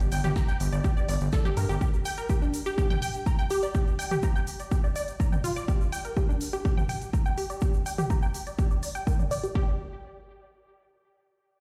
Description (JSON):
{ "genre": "melodic techno", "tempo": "124 BPM", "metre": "4/4", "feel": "straight", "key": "unclear", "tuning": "A4 = 439 Hz", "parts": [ { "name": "gritty driven synth bass", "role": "bass", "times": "0.0-1.8 s", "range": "G1 to G2", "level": "-29 LUFS", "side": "equal", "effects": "sidechain pumping" }, { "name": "dusty soul sampler-style drum kit", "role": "drums", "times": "0.0-1.7 s", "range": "hi-hat, shaker, snare drum", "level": "-49 LUFS", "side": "equal", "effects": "overdrive, sidechain pumping on perc, high-pass filter on perc, sidechain pumping on hats, high-pass filter on hats, high-pass filter on snare" }, { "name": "egg shaker", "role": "percussion", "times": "0.0-9.5 s", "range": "none", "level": "-48 LUFS", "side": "equal", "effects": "none" }, { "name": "unison pluck", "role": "arpeggios", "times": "0.1-9.8 s", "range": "D4 to Bb5", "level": "-34 LUFS", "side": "equal", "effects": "phaser, sidechain pumping, dub echo" }, { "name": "techno drum kit", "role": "drums", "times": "0.1-9.5 s", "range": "hi-hat, toms", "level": "-37 LUFS", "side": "equal", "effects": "overdrive" }, { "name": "electronic kick drum", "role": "drums", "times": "0.4-9.7 s", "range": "none", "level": "-29 LUFS", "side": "equal", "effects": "overdrive" } ], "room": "light reverb, digital ambience", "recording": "played on a big sound system in a bare room, stone room reverb", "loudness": "-27 LUFS", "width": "mono", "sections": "0.0-9.6 A section; 9.6-11.6 B section", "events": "filter sweep on synth pluck 0.0-9.6", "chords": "0.0 G5; 1.8 Bb; 9.6 N.C." }